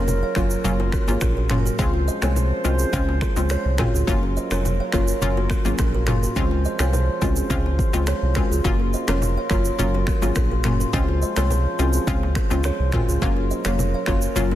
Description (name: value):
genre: afrobeats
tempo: 105 BPM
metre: 4/4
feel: straight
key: Db major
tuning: A4 = 440 Hz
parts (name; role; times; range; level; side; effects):
- analog pluck; accompaniment; 0.0-14.6 s; Gb3 to F4; -25 LUFS; left 3 dB; chorus
- mellow woodwind section; sustained chords; 0.0-14.6 s; F3 to C5; -31 LUFS; left 2 dB; none
- kalimba; riff; 0.0-14.6 s; F4 to F5; -30 LUFS; right 8 dB; ping-pong delay
- round analog bass; bass; 0.0-14.6 s; F1 to Db2; -22 LUFS; equal; none
- afro-pop drum kit; drums; 0.1-14.5 s; finger snaps, kick drum, rim click, shaker, toms; -25 LUFS; equal; soft clipping on snare
- bongos and congas; percussion; 0.1-14.6 s; none; -32 LUFS; left 2 dB; none
room: small room ambience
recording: dense, heavily limited modern master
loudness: -19 LUFS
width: side -13 dB against mid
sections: 0.0-14.6 A section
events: none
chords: 0.0 Gbmaj7; 1.8 Dbmaj7; 4.1 Gbmaj7; 6.4 Dbmaj7; 8.6 Gbmaj7; 10.9 Dbmaj7; 13.2 Gbmaj7